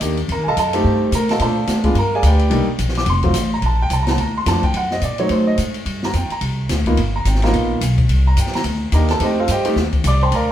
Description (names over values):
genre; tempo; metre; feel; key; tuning
jazz, small-group swing and bop; 215 BPM; 4/4; swing 60% on 8ths; Bb major; A4 = 440 Hz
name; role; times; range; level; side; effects
warm concert grand piano; accompaniment; 0.0-10.5 s; F3 to D6; -19 LUFS; right 1 dB; none
upright bass; bass; 0.0-10.5 s; F1 to Bb2; -18 LUFS; equal; none
open jazz drum kit; drums; 0.0-10.4 s; hi-hat, kick drum, ride cymbal, snare drum; -24 LUFS; left 2 dB; none
room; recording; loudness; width
moderate stone room reverb, RT60 1.1 s; band playing live in one room; -15 LUFS; side -11 dB against mid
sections
0.0-3.6 A section; 3.6-10.5 A section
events
none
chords
0.3 F9; 1.4 Bbmaj9; 2.0 G7b9; 2.5 Cm7; 3.1 F; 3.6 Bbmaj9; 4.7 F#dim7; 5.9 Gm7; 7.0 G7alt; 8.1 Cm9; 9.2 F9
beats
0.01 | 0.29 0.56 0.84 1.12 | 1.40 1.68 1.96 2.23 | 2.51 2.79 3.07 3.35 | 3.63 3.90 4.18 4.46 | 4.74 5.02 5.30 5.58 | 5.86 6.14 6.42 6.70 | 6.97 7.25 7.53 7.81 | 8.09 8.37 8.65 8.93 | 9.21 9.48 9.76 10.04 | 10.32